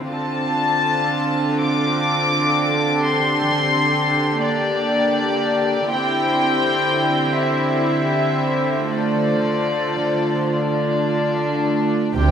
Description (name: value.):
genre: cinematic, emotional film score for orchestra.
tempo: 35-44 BPM (dotted quarters).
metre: 6/8.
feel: rubato.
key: D minor.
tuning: A4 = 440 Hz.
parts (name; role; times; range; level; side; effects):
warm studio violin section; second line; 0.0-12.3 s; C4 to C5; -24 LUFS; left 1 dB; none.
warm studio viola section; accompaniment; 0.0-12.3 s; C3 to F4; -22 LUFS; right 1 dB; none.
warm studio cello section; bass; 0.0-12.3 s; D3; -25 LUFS; right 3 dB; none.
warm studio violin section; melody; 0.1-12.3 s; D5 to D6; -21 LUFS; left 3 dB; none.
warm studio double bass section; bass; 12.2-12.3 s; D2; -16 LUFS; right 3 dB; none.
room: wet scoring stage reverb, RT60 1.9 s.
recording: none.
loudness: -17 LUFS.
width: side -8 dB against mid.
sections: 0.0-12.2 A section.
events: none.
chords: 0.1 Dm7; 3.0 Gmadd9/D; 5.9 C/D; 8.9 Dm7.